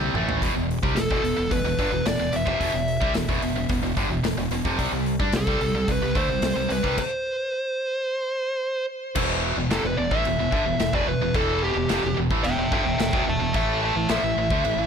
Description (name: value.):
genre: heavy metal.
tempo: 110 BPM.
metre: 4/4.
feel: straight.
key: E minor.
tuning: A4 = 439 Hz.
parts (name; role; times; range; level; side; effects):
heavy high-gain guitar; riff; 0.0-14.9 s; E2 to D4; -24 LUFS; right 1 dB; distortion.
growling fingered electric bass; bass; 0.0-14.9 s; E1 to G2; -30 LUFS; equal; overdrive.
big rock drum kit; drums; 0.0-14.8 s; china cymbal, crash cymbal, hi-hat, kick drum, snare drum, toms; -28 LUFS; left 1 dB; none.
high-gain lead guitar; melody; 1.0-14.9 s; G4 to A5; -26 LUFS; equal; distortion, digital delay.
room: light reverb.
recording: none.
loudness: -21 LUFS.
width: side -7 dB against mid.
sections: 0.0-9.2 A section; 9.2-14.9 B section.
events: drum fill 0.0-0.4; stop 7.0-9.2; lead electric guitar solo 9.2-14.9.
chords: 0.4 Em; 4.8 C5; 9.2 Em; 13.5 A5.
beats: | 0.42 0.97 1.51 2.06 | 2.60 3.15 3.69 4.24 | 4.79 5.33 5.88 6.42 | 6.97 7.52 8.07 8.61 | 9.16 9.71 10.26 10.80 | 11.35 11.90 12.45 13.00 | 13.54 14.09 14.64.